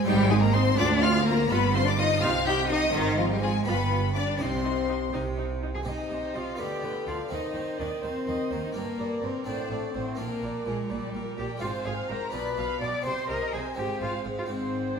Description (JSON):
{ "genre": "classical, baroque-style concerto movement with solo episodes", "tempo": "83 BPM (dotted quarters)", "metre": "6/8", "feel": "straight", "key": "C minor", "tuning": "A4 = 439 Hz", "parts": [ { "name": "warm cello", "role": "melody", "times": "0.0-15.0 s", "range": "Eb3 to D5", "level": "-30 LUFS", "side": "left 2 dB", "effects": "none" }, { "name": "warm chamber violin section", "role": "melody", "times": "0.0-15.0 s", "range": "Eb5 to G6", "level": "-34 LUFS", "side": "left 6 dB", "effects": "none" }, { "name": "rich chamber violin section", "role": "second line", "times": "0.0-15.0 s", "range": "Eb4 to D6", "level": "-33 LUFS", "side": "left 4 dB", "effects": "none" }, { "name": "harpsichord", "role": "accompaniment", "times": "0.0-15.0 s", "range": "D2 to G4", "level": "-34 LUFS", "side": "right 1 dB", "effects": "none" }, { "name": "rich chamber viola section", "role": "accompaniment", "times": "0.1-15.0 s", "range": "Eb4 to F5", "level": "-36 LUFS", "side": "right 1 dB", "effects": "none" }, { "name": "rich chamber double bass section", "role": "bass", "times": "0.1-15.0 s", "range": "G1 to Eb2", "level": "-34 LUFS", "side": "right 4 dB", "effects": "none" }, { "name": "rich studio cello section", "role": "bass", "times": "0.1-15.0 s", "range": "D2 to Eb3", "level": "-32 LUFS", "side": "right 4 dB", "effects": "none" } ], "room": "wet scoring stage reverb, RT60 1.6 s", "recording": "minimal, uncompressed stereo recording", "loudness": "-25 LUFS", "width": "side -6 dB against mid", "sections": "0.0-5.9 A section; 5.9-15.0 B section", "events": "none", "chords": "0.1 Ab; 0.8 Dm7b5; 1.5 G5; 2.2 Cm; 2.9 Fm/Ab; 3.7 G7; 4.4 Cm; 6.6 G7/D; 7.3 Cm/Eb; 8.8 Gm; 9.5 D7/A; 10.2 Gm/Bb; 11.6 Fm/Ab; 12.3 G7/B; 13.1 Cm; 13.8 Fm/Ab" }